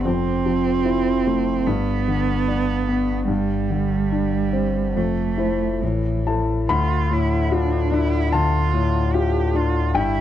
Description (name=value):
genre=neoclassical piano and strings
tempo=74 BPM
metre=4/4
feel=rubato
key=D dorian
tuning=A4 = 444 Hz
part: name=rich cello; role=second line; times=0.0-10.2 s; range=E3 to G4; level=-23 LUFS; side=right 8 dB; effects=none
part: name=warm grand piano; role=accompaniment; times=0.0-10.2 s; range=D2 to B5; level=-22 LUFS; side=left 4 dB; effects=none
part: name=sub bass with octave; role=bass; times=0.0-10.2 s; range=F1 to D2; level=-25 LUFS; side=equal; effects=none
room=little or no reverb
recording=dry, close 1970s-style studio recording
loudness=-18 LUFS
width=side -11 dB against mid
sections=0.0-6.7 A section; 6.7-10.2 A section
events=none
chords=0.1 Fmaj7; 1.7 G; 3.3 Csus2/G; 5.0 Fmaj7; 5.8 A5; 6.7 Dm